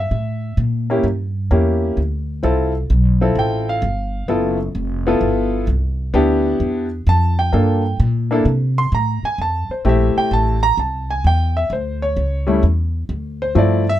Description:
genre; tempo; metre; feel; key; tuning
jazz, small-group swing and bop; 130 BPM; 4/4; swing 67% on 8ths; F major from 9.4 s; A4 = 440 Hz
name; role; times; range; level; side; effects
clear grand piano; accompaniment; 0.0-14.0 s; F3 to C6; -18 LUFS; left 1 dB; none
upright bass; bass; 0.0-14.0 s; F1 to C3; -18 LUFS; equal; none
room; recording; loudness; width
little or no reverb; close, detailed microphones; -16 LUFS; side -12 dB against mid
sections
0.0-9.4 A section; 9.4-14.0 A section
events
none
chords
0.1 A7b9; 2.0 Dm9; 3.8 G13; 5.7 Cmaj9; 7.5 Gm7; 8.5 Ammaj7; 9.4 Fmaj7; 11.2 D9sus4; 12.2 A7; 13.1 Dm7

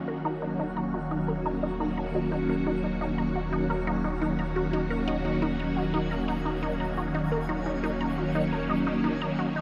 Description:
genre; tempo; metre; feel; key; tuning
ambient, sequencer-driven space music; 87 BPM; 4/4; straight; Eb minor; A4 = 440 Hz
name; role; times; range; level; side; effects
phased string machine; sustained chords; 0.0-9.6 s; Eb3 to Gb4; -30 LUFS; equal; ensemble chorus, phaser
round analog bass; bass; 0.0-9.6 s; Eb1; -40 LUFS; equal; none
twinkling granular texture; texture; 0.0-9.6 s; F5 to Ab5; -56 LUFS; equal; none
resonant blip pluck; riff; 0.1-9.6 s; Eb4 to Bb5; -34 LUFS; equal; phaser, delay
room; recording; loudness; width
wet huge ambient reverb, RT60 8.9 s; dreamy mix soaked in reverb; -29 LUFS; mono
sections
0.0-9.6 A section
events
filter sweep on synth arpeggio sound 0.0-9.6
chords
0.0 Ebm7

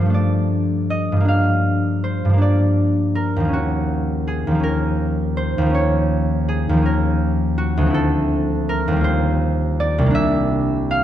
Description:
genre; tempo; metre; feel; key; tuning
classical, solo harp piece; 54 BPM (dotted quarters); 6/8; rubato; unclear; A4 = 440 Hz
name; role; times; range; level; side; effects
concert harp; solo; 0.0-11.0 s; C2 to F5; -16 LUFS; equal; none
room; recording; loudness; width
moderate concert hall reverb, RT60 2.1 s; none; -16 LUFS; side -11 dB against mid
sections
0.0-11.0 A section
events
none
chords
0.0 Gm9; 1.3 Bbmaj7/G; 3.5 Ebm9; 8.0 Dm9; 9.1 Eb69; 10.2 C9

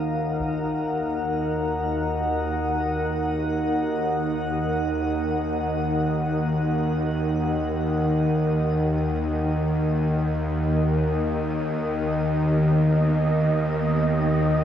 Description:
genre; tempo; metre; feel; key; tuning
dark ambient drone; free time; none; none; Eb minor; A4 = 438 Hz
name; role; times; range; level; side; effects
deep dark ambient pad; sustained chords; 0.0-14.6 s; D#3 to Gb5; -26 LUFS; equal; chorus, built-in reverb, shimmer reverb
bowed-like drone; drone; 0.0-14.6 s; Eb2 to Eb3; -23 LUFS; equal; built-in reverb
taiko ensemble; percussion; 0.4-0.6 s; none; -42 LUFS; equal; low-pass filter on perc
wind-like tuned noise texture; texture; 12.1-14.6 s; D#5; -30 LUFS; equal; built-in reverb, shimmer reverb
room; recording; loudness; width
wet cathedral reverb, RT60 6.0 s; none; -21 LUFS; side -9 dB against mid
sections
0.0-14.6 A section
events
fade-in on drum 0.0-14.6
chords
0.0 Ebm; 11.3 B/D#

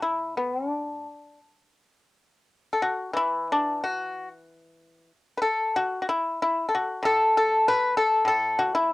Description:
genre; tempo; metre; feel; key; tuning
chinese traditional, Chinese solo plucked strings; 84-98 BPM; 4/4; rubato; unclear; A4 = 440 Hz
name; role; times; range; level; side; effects
pipa; solo; 0.0-8.9 s; A2 to B4; -22 LUFS; left 2 dB; cassette tape
room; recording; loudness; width
light reverb; home recording on cassette; -22 LUFS; side -19 dB against mid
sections
0.0-1.8 A section; 1.8-8.9 B section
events
none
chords
none

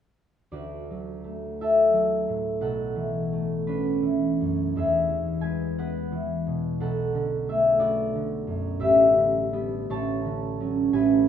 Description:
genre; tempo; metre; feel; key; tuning
classical, solo harp piece; 58 BPM (dotted quarters); 6/8; uneven beats, rubato; D lydian; A4 = 440 Hz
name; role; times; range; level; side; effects
concert harp; solo; 0.5-11.3 s; A1 to A5; -22 LUFS; equal; none
room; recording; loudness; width
little or no reverb; close, detailed microphones; -22 LUFS; side -9 dB against mid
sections
0.5-11.3 A section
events
none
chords
0.5 Dadd9; 2.6 Bm11; 4.8 Eadd9; 6.8 Bm7; 8.8 A11; 9.9 Dmaj7/A

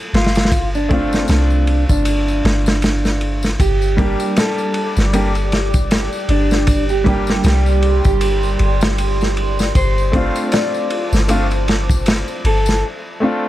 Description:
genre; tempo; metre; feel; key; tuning
trip hop; 78 BPM; 4/4; swing 57% on 16ths; G minor; A4 = 439 Hz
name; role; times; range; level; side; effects
electric guitar at the edge of break-up; melody; 0.1-12.8 s; D4 to D5; -22 LUFS; right 1 dB; vintage 12-bit sampler grit, tape echo
soft 808-style bass; bass; 0.1-12.8 s; G1 to C2; -17 LUFS; equal; none
crunchy breakbeat drum kit; drums; 0.1-12.8 s; kick drum, ride cymbal, snare drum; -19 LUFS; equal; none
tambourine; percussion; 0.4-12.8 s; none; -34 LUFS; left 5 dB; none
clear upright piano; accompaniment; 0.9-13.5 s; G3 to G4; -22 LUFS; equal; harmonic tremolo, tape echo
deep dark ambient pad; sustained chords; 4.6-12.8 s; F4 to D6; -25 LUFS; equal; chorus, built-in reverb
room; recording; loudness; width
studio ambience; vinyl crackle; -14 LUFS; side -14 dB against mid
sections
0.0-13.5 A section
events
break 12.8-13.5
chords
0.0 Dm7/G; 3.6 Gm; 9.8 Dm7/G

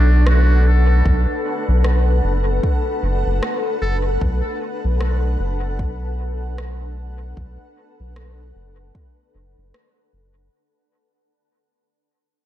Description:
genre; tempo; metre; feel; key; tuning
ambient dub; 76 BPM; 4/4; swing 60% on 16ths; B minor; A4 = 441 Hz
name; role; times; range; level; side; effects
trumpet with metal mute; melody; 0.0-4.0 s; D4 to A4; -29 LUFS; equal; dub echo
granular cloud pad; sustained chords; 0.0-10.5 s; D4 to F#5; -25 LUFS; left 1 dB; built-in reverb
round analog bass; bass; 0.0-10.5 s; F#1 to B1; -17 LUFS; equal; none
electronic rim click; drums; 0.3-9.9 s; none; -31 LUFS; equal; dub echo
electronic kick drum; drums; 1.1-9.1 s; none; -22 LUFS; equal; none
room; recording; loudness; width
little or no reverb; none; -16 LUFS; side -12 dB against mid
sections
0.0-10.5 A section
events
fade-out 0.0-10.5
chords
0.0 Bm7

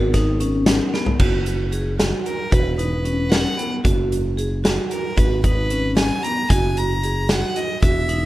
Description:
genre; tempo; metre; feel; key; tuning
progressive instrumental, band music in an uneven meter; 226 BPM (eighths); 5/8; straight; unclear; A4 = 440 Hz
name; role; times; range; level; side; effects
mellow tine electric piano; accompaniment; 0.0-1.2 s; B3 to A#4; -26 LUFS; left 2 dB; none
vibraphone with hard mallets; arpeggios; 0.0-8.3 s; B3 to G#4; -25 LUFS; right 1 dB; plate reverb, analog delay
fingered electric bass; bass; 0.0-8.3 s; E1 to G#1; -22 LUFS; equal; none
huge arena drum kit; drums; 0.1-8.2 s; crash cymbal, hi-hat, kick drum, snare drum, toms; -21 LUFS; equal; none
bright violin; melody; 2.3-8.3 s; A#4 to A#5; -25 LUFS; equal; none
room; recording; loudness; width
light reverb; rough home demo mix; -17 LUFS; side -16 dB against mid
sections
0.0-1.2 A section; 1.2-8.3 B section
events
drum fill 0.9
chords
0.0 G#madd9; 1.2 F#add9; 2.5 Esus2; 3.8 F#add9; 5.2 G#m; 6.5 F#

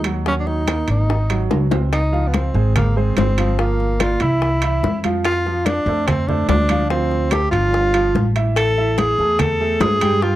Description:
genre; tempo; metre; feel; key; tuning
Afro-Cuban jazz; 144 BPM; 4/4; straight; unclear; A4 = 442 Hz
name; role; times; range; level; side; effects
upright bass; bass; 0.0-10.4 s; G1 to G2; -20 LUFS; equal; none
timbales; percussion; 0.0-10.2 s; none; -27 LUFS; right 5 dB; none
warm baby grand piano; accompaniment; 0.1-10.4 s; Fb3 to G5; -24 LUFS; right 5 dB; none
bongos; percussion; 0.1-10.4 s; none; -25 LUFS; left 8 dB; none
warm tenor saxophone; melody; 0.3-10.4 s; Bb3 to A4; -20 LUFS; equal; none
congas; percussion; 0.3-10.4 s; none; -24 LUFS; left 1 dB; none
room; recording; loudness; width
studio ambience; dry, close 1970s-style studio recording; -16 LUFS; side -14 dB against mid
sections
0.0-1.9 A section; 1.9-10.4 B section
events
drum fill 1.5-1.9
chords
0.3 Ebm; 1.1 Ab7; 1.9 Dbmaj7; 3.6 Gm7; 4.4 Cadd11; 5.2 F; 6.9 Dm7; 7.7 Gsus2; 8.6 A5

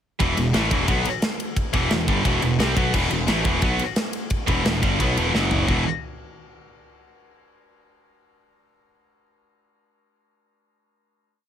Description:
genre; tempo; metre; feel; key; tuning
heavy metal; 175 BPM; 4/4; straight; E minor; A4 = 440 Hz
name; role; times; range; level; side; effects
heavy high-gain guitar; riff; 0.2-5.8 s; E2 to C4; -25 LUFS; left 10 dB; distortion
scooped high-gain guitar; riff; 0.2-5.8 s; E2 to C4; -24 LUFS; right 11 dB; distortion
fuzz picked electric bass; bass; 0.2-5.8 s; E1 to C2; -25 LUFS; equal; overdrive
tight metal drum kit; drums; 0.2-5.8 s; crash cymbal, kick drum, ride cymbal, snare drum, toms; -24 LUFS; equal; none
room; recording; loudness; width
little or no reverb; none; -19 LUFS; side -9 dB against mid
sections
0.2-5.7 riff; 5.7-7.1 final chord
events
drum fill 5.3-5.7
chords
0.2 Em; 5.3 F#5; 5.7 E5

